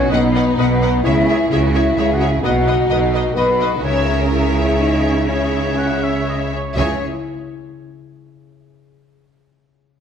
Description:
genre	cinematic, heroic adventure film score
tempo	119-129 BPM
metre	3/4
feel	straight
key	C# minor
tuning	A4 = 440 Hz
part	mellow concert flute	second line	0.0-7.1 s	B4 to B5	-25 LUFS	left 2 dB	none
part	rich symphonic violin section	second line	0.0-7.0 s	D#4 to C#5	-29 LUFS	left 1 dB	none
part	dark French horn section	sustained chords	0.0-7.0 s	B3 to B4	-19 LUFS	left 2 dB	none
part	concert harp	arpeggios	0.0-8.3 s	B2 to F#5	-28 LUFS	left 7 dB	none
part	rich symphonic cello section	bass	0.0-7.0 s	B2 to C#3	-22 LUFS	right 3 dB	none
part	rich symphonic double bass section	bass	0.0-7.0 s	B1 to C#2	-21 LUFS	right 2 dB	none
part	warm symphonic violin section	melody	0.1-7.0 s	D#5 to F#5	-27 LUFS	left 3 dB	none
part	rich symphonic viola section	accompaniment	0.1-7.0 s	G#4 to D#5	-26 LUFS	right 1 dB	none
part	clear oboe	second line	5.8-6.8 s	C#5 to F#5	-28 LUFS	equal	none
room	wet scoring stage reverb, RT60 1.7 s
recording	none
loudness	-14 LUFS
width	side -8 dB against mid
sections	0.0-6.8 A section; 6.8-8.3 B section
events	slowing down 3.1-6.8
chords	0.0 B; 1.0 C#m; 2.4 B; 3.8 C#m

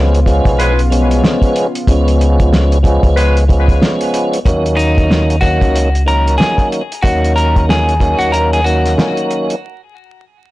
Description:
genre	hip hop, boom-bap hip-hop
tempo	93 BPM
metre	4/4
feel	swing 60% on 16ths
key	Eb minor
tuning	A4 = 442 Hz
part	tonewheel organ	accompaniment	0.0-9.6 s	Eb3 to Db4	-16 LUFS	right 1 dB	overdrive, chorus vibrato, slow rotary speaker, cassette tape, high-pass filter, low-pass filter
part	dark analog pad	sustained chords	0.0-4.4 s	Db3 to F4	-22 LUFS	left 3 dB	chorus, high-pass filter, low-pass filter
part	upright bass	bass	0.0-8.9 s	Cb2 to Eb2	-14 LUFS	equal	transformer saturation
part	cloth-damped thuddy drum kit	drums	0.1-9.6 s	hi-hat, kick drum, snare drum	-15 LUFS	equal	none
part	edgy saxophone section	stabs	0.6-3.4 s	Ab3 to Cb5	-20 LUFS	left 2 dB	high-pass filter, low-pass filter, ping-pong delay
part	clean electric guitar	melody	4.8-8.9 s	Eb4 to Bb4	-17 LUFS	left 1 dB	high-pass filter, low-pass filter, ping-pong delay
room	light reverb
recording	blown-out, overdriven recording, vinyl crackle, overdrive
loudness	-10 LUFS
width	side -18 dB against mid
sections	0.0-4.5 A section; 4.5-9.6 B section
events	kick muted 8.3-9.6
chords	0.0 Db7; 4.5 Ebm7

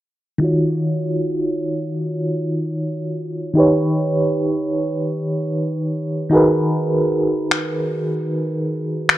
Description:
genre	contemporary R&B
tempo	76 BPM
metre	4/4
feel	straight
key	Eb minor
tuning	A4 = 442 Hz
part	FM electric piano with tremolo	accompaniment	0.4-9.2 s	Eb3 to Db5	-18 LUFS	equal	low-pass filter
part	electronic finger snaps	drums	7.5-9.2 s	none	-16 LUFS	left 2 dB	none
room	light reverb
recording	none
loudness	-18 LUFS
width	side -14 dB against mid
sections	0.4-9.2 A section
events	filter sweep on FM electric piano 0.4-9.2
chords	0.4 Ebm9; 3.6 Eb7b13; 6.3 Abm9/Eb

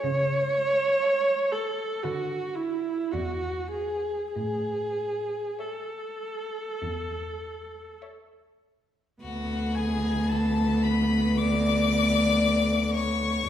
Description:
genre	classical, slow romantic movement for string quartet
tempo	48-61 BPM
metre	4/4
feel	rubato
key	unclear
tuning	A4 = 440 Hz
part	warm viola	accompaniment	0.0-13.4 s	B3 to C#5	-28 LUFS	right 1 dB	none
part	rich cello	bass	0.0-13.4 s	D2 to D3	-27 LUFS	equal	none
part	rich violin	melody	1.0-13.5 s	E5 to D6	-30 LUFS	left 7 dB	none
part	rich violin	second line	1.0-13.5 s	F#4 to E5	-32 LUFS	left 4 dB	none
room	wet recital hall reverb, RT60 1.5 s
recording	heard from further back in the room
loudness	-24 LUFS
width	side -10 dB against mid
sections	0.0-9.2 A section; 9.2-13.5 B section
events	none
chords	0.0 A/C#; 2.0 Bm/D; 3.1 E7; 4.4 A; 9.2 Bm/D

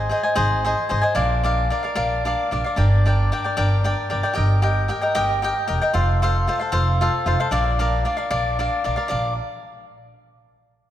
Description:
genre	mexican folk, mariachi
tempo	76 BPM (dotted quarters)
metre	6/8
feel	rubato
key	Bb major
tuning	A4 = 440 Hz
part	cavaquinho	accompaniment	0.0-9.3 s	D4 to Ab5	-21 LUFS	left 1 dB	none
part	upright bass	bass	0.0-9.4 s	E1 to Bb1	-21 LUFS	right 1 dB	none
room	moderate concert hall reverb, RT60 2.1 s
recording	none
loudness	-18 LUFS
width	side -12 dB against mid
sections	0.0-9.1 A section; 9.1-10.7 B section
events	none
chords	0.0 Ab; 1.2 Bb; 2.8 Gm; 4.4 Eb/G; 5.9 F; 7.5 Bb

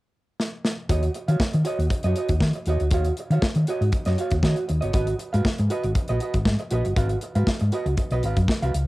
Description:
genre	disco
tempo	118 BPM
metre	4/4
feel	straight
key	Eb minor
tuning	A4 = 440 Hz
part	modern studio drum kit	drums	0.4-8.9 s	hi-hat, kick drum, snare drum	-25 LUFS	equal	cassette tape
part	electric guitar at the edge of break-up	accompaniment	0.9-8.8 s	Gb4 to F5	-28 LUFS	right 2 dB	spring reverb, cassette tape
part	hollow-body short-scale fingered electric bass	bass	0.9-8.8 s	G1 to Eb3	-22 LUFS	equal	none
room	little or no reverb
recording	home recording on cassette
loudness	-21 LUFS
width	side -19 dB against mid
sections	0.9-8.9 A section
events	drum fill 0.4-0.9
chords	0.0 N.C.; 0.9 Ebm7; 4.9 Abm7

